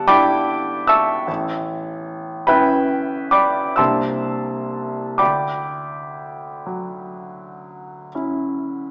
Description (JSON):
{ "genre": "classical, impressionist solo piano", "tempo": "40-51 BPM (dotted quarters)", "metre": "9/8", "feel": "rubato", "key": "D major", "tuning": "A4 = 439 Hz", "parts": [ { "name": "clear grand piano", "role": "solo", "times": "0.0-8.9 s", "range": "G1 to E6", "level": "-18 LUFS", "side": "equal", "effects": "none" } ], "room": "wet recital hall reverb, RT60 1.5 s", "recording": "small speaker sound", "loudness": "-17 LUFS", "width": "side -33 dB against mid", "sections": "0.0-8.9 A section", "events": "none", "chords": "0.0 G69; 1.3 A9; 3.8 C9; 5.2 Dmaj9", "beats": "0.09 | 1.28 2.49 3.78 | 5.19 6.66 8.13" }